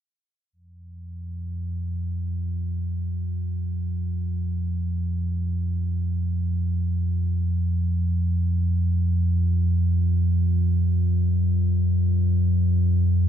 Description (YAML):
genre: ambient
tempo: free time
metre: none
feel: none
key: unclear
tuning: A4 = 440 Hz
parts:
  - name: deep rumbling drone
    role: drone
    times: 0.9-13.3 s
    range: F2 to F3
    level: -21 LUFS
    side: equal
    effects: built-in reverb
room: light reverb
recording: cassette tape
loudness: -22 LUFS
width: side -10 dB against mid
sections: 0.5-13.3 A section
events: none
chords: none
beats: free time